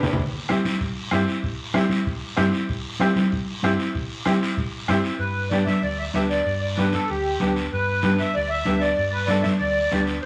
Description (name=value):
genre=latin, cumbia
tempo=191 BPM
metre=4/4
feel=straight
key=G major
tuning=A4 = 439 Hz
part: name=bright upright piano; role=accompaniment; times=0.0-10.1 s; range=B3 to B5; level=-29 LUFS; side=equal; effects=none
part: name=congas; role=percussion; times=0.0-10.1 s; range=none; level=-27 LUFS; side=equal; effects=none
part: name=guiro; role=percussion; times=0.0-10.3 s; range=none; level=-35 LUFS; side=equal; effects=none
part: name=fingered electric bass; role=bass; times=0.2-10.3 s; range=C2 to G2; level=-33 LUFS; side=equal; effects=none
part: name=bombo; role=percussion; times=0.2-5.0 s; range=none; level=-34 LUFS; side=equal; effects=none
part: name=accordion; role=melody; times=5.2-10.3 s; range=G4 to E5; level=-26 LUFS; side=equal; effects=light tremolo tuning
room=wet studio reverb, RT60 0.9 s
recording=vinyl crackle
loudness=-23 LUFS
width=mono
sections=0.0-5.2 A section; 5.2-10.3 B section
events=drum fill 0.0; upright piano fill 0.0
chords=0.2 C; 5.2 G